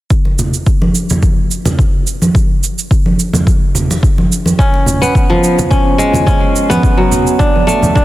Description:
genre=organic downtempo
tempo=107 BPM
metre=4/4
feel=swing 53% on 16ths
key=unclear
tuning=A4 = 440 Hz
part: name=cabasa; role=drums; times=0.1-8.0 s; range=none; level=-22 LUFS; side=right 7 dB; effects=overdrive
part: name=electronic kick drum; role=drums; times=0.1-8.0 s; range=none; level=-12 LUFS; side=equal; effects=none
part: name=congas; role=percussion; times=0.3-7.9 s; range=none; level=-16 LUFS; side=right 1 dB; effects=none
part: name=kora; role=arpeggios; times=4.6-8.0 s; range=E#3 to D4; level=-12 LUFS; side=equal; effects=tape echo
room=light reverb, small room reverb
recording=dense, heavily limited modern master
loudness=-10 LUFS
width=side -16 dB against mid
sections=0.1-8.0 A section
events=none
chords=0.1 N.C.; 4.6 C#7; 6.8 Bm7

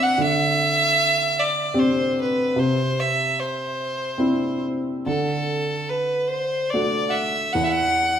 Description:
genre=celtic folk, Celtic slow air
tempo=73 BPM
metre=3/4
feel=uneven beats, rubato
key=D mixolydian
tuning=A4 = 440 Hz
part: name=clear fiddle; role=melody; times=0.0-8.2 s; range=A4 to F#5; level=-21 LUFS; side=right 1 dB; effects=none
part: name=felt-muted upright piano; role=accompaniment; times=0.0-8.2 s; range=E2 to G4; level=-24 LUFS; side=equal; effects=none
room=wet recital hall reverb, RT60 1.6 s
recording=recorded in a church or concert hall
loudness=-19 LUFS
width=side -9 dB against mid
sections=0.0-8.2 A section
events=none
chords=0.2 D7sus4; 2.6 Cadd9; 5.1 D; 7.5 N.C.

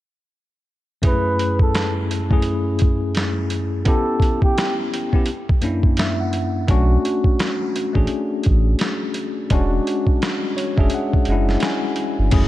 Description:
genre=lo-fi hip hop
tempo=85 BPM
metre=4/4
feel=swing 59% on 16ths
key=F# minor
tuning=A4 = 440 Hz
part: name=bell-like tine electric piano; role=accompaniment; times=1.0-12.5 s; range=F#2 to G#5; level=-21 LUFS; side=left 2 dB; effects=medium stereo tremolo, cassette tape
part: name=boom bap sampler-style drum kit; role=drums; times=1.0-12.5 s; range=crash cymbal, hi-hat, kick drum, snare drum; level=-20 LUFS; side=equal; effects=none
part: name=breathy flugelhorn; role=melody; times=1.1-4.7 s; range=G4 to B4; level=-26 LUFS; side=right 1 dB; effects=tape echo
part: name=soft dub sub bass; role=bass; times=6.7-12.5 s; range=E1 to B1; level=-18 LUFS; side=equal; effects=none
part: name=lush unison pad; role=sustained chords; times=12.3-12.5 s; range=E3 to F#4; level=-29 LUFS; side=right 1 dB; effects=none
room=light reverb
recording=cassette tape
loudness=-17 LUFS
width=side -15 dB against mid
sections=1.0-12.3 A section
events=tine electric piano fill 5.6-6.7, 10.2-12.3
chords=1.0 F#m9; 3.9 C#m7b5; 5.3 F#7b13; 6.7 Bm9 (rootless); 9.5 E13

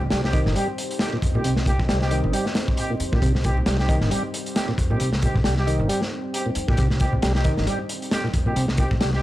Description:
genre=breakbeat, breaks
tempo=135 BPM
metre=4/4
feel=swing 57% on 16ths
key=C minor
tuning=A4 = 440 Hz
part: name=deep dark ambient pad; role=sustained chords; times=0.0-9.2 s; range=G3 to G5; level=-32 LUFS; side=equal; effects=chorus, built-in reverb, sidechain pumping
part: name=upright bass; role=bass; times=0.0-9.2 s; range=G1 to F2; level=-25 LUFS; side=equal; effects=tube saturation
part: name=congas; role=percussion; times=0.0-9.0 s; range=none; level=-30 LUFS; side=right 1 dB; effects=none
part: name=overdriven tonewheel organ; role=riff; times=0.1-9.1 s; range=Bb2 to G3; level=-27 LUFS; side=equal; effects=chorus vibrato, slow rotary speaker, analog delay
part: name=crunchy breakbeat drum kit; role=drums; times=0.1-9.2 s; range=hi-hat, kick drum, snare drum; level=-24 LUFS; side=equal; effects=none
part: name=dark brass ensemble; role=stabs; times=0.2-9.2 s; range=C4 to G4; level=-30 LUFS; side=right 1 dB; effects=vintage 12-bit sampler grit, analog delay
room=studio ambience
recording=dry, gritty hardware recording, vinyl crackle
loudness=-20 LUFS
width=side -15 dB against mid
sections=0.0-9.2 A section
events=none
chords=0.0 Cm

